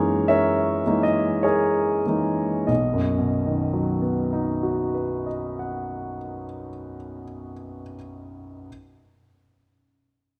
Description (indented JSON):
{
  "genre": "classical, impressionist solo piano",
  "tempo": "46-55 BPM",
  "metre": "3/4",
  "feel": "rubato",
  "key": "B major",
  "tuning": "A4 = 440 Hz",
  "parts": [
    { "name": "clear grand piano", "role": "solo", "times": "0.0-8.7 s", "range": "B1 to F#5", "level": "-25 LUFS", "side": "equal", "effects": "none" }
  ],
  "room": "wet concert hall reverb, RT60 2.4 s",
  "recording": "none",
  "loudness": "-23 LUFS",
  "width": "mono",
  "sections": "0.0-2.7 A section; 2.7-6.5 B section",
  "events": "slowing down 0.0-2.7",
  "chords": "0.0 F#13; 2.7 B",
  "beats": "0.28 1.43 | 2.69 3.96 5.23"
}